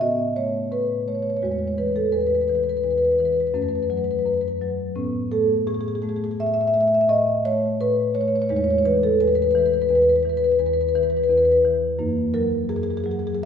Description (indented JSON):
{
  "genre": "classical, contemporary piece for solo marimba",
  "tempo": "85 BPM",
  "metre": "5/4",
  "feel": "rubato",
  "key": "unclear",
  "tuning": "A4 = 439 Hz",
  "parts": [
    { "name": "marimba with medium mallets", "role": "solo", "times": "0.0-13.5 s", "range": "E2 to E5", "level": "-19 LUFS", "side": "left 1 dB", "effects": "none" }
  ],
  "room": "wet recital hall reverb, RT60 1.3 s",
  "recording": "recorded in a church or concert hall, nothing above 11.0 kHz",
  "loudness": "-19 LUFS",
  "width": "side -7 dB against mid",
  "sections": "0.0-13.5 A section",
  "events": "none",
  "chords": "0.0 Asus2; 1.4 Eadd9; 3.6 F#m; 5.0 Amaj9; 8.5 Emaj7; 12.0 F#69"
}